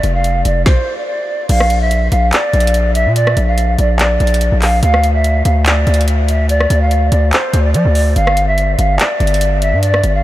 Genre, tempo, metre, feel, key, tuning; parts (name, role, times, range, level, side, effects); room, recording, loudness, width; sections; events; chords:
hip hop, trap; 144 BPM; 4/4; half-time; A4 = 441 Hz
breathy jazz flute; melody; 0.0-10.2 s; C5 to F5; -16 LUFS; equal; low-pass filter, tape echo
distorted 808-style bass; bass; 0.0-10.2 s; F1 to F3; -13 LUFS; equal; distortion
trap drum kit; drums; 0.0-10.1 s; crash cymbal, handclaps, hi-hat, kick drum, rim click, snare drum; -19 LUFS; equal
moderate huge ambient reverb, RT60 6.9 s; dreamy mix soaked in reverb; -11 LUFS; side -14 dB against mid
0.0-1.5 A section; 1.5-10.2 B section
0.0 Dm7/F; 1.5 Bb; 4.8 Dm; 8.2 G5